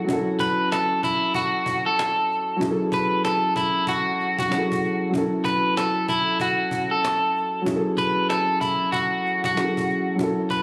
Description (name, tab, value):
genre	hip hop, boom-bap hip-hop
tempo	95 BPM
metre	4/4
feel	swing 62% on 16ths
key	F# minor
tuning	A4 = 440 Hz
part	electric guitar at the edge of break-up	melody	0.0-10.6 s	E4 to B4	-25 LUFS	equal	high-pass filter, low-pass filter, tape echo
part	dark concert grand piano	accompaniment	0.0-10.6 s	F#3 to A4	-28 LUFS	equal	cassette tape, high-pass filter, low-pass filter
part	cajon	drums	0.1-10.6 s	none	-35 LUFS	equal	none
room	light reverb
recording	recorded on a phone in the room, studio reverb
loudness	-23 LUFS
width	mono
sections	0.0-10.6 A section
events	none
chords	0.0 F#m7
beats	| 0.09 0.72 1.35 1.98 | 2.61 3.24 3.88 4.51 | 5.14 5.77 6.40 7.03 | 7.67 8.30 8.93 9.56 | 10.19